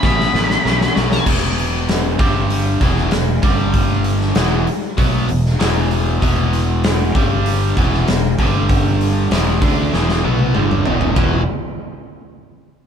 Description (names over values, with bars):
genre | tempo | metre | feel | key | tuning
blues rock power trio and southern rock | 97 BPM | 4/4 | straight | unclear | A4 = 440 Hz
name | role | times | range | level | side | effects
octave-fuzz lead guitar | melody | 0.0-1.2 s | B5 | -20 LUFS | left 1 dB | distortion
biting overdriven guitar | riff | 0.0-11.4 s | E2 to D4 | -19 LUFS | equal | none
growling fingered electric bass | bass | 0.0-11.5 s | E1 to D2 | -19 LUFS | equal | overdrive
big rock drum kit | drums | 0.0-11.3 s | crash cymbal, hi-hat, kick drum, ride cymbal, snare drum, toms | -18 LUFS | equal | none
room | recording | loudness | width
moderate studio reverb, RT60 0.7 s | band playing live in one room | -14 LUFS | side -8 dB against mid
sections
0.0-1.3 A section; 1.3-11.2 B section; 11.2-12.9 C section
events
lead electric guitar solo 0.0-1.3; drum fill 0.0-1.3, 9.9-11.2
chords
0.0 E5; 2.2 G5; 2.8 E5; 3.4 G5; 4.4 E5; 7.2 G5; 7.8 E5; 8.4 G5; 9.3 E5